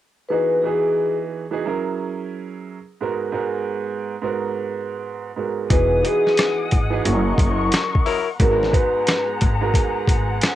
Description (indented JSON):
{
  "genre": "hip hop, boom-bap hip-hop",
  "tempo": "89 BPM",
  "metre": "4/4",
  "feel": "swing 63% on 16ths",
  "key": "G# minor",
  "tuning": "A4 = 440 Hz",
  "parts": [
    { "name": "vibraphone with soft mallets", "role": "melody", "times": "0.3-1.1, 5.7-9.3 s", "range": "G#4 to B4", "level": "-21 LUFS", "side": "left 2 dB", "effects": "high-pass filter, low-pass filter, cassette tape" },
    { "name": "warm upright piano", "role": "accompaniment", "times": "0.3-10.6 s", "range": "G#2 to B4", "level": "-24 LUFS", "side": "right 7 dB", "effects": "cassette tape, high-pass filter, low-pass filter" },
    { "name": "muted studio string section", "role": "sustained chords", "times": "5.7-10.6 s", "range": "B3 to D#6", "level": "-27 LUFS", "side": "left 5 dB", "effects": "high-pass filter, low-pass filter, cassette tape" },
    { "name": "upright bass", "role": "bass", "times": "5.7-10.4 s", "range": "E1 to G#1", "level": "-22 LUFS", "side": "left 1 dB", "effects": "none" },
    { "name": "boom bap sampler-style drum kit", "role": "drums", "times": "5.7-10.6 s", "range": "hi-hat, kick drum, rim click, snare drum", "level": "-19 LUFS", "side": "left 1 dB", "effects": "cassette tape" },
    { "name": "warm saxophone section", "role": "stabs", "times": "8.1-8.3 s", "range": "F#3 to A#4", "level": "-25 LUFS", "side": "left 8 dB", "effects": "high-pass filter, low-pass filter, cassette tape, analog delay" }
  ],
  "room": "moderate booth ambience, RT60 0.2 s",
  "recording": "home recording on cassette",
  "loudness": "-18 LUFS",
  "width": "side -13 dB against mid",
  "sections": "0.3-5.7 A section; 5.7-10.6 B section",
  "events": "break 3.0-5.7",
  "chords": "0.3 Emaj9; 1.7 F#7; 3.0 G#m9; 5.7 Emaj9; 7.1 F#7; 8.4 G#m9"
}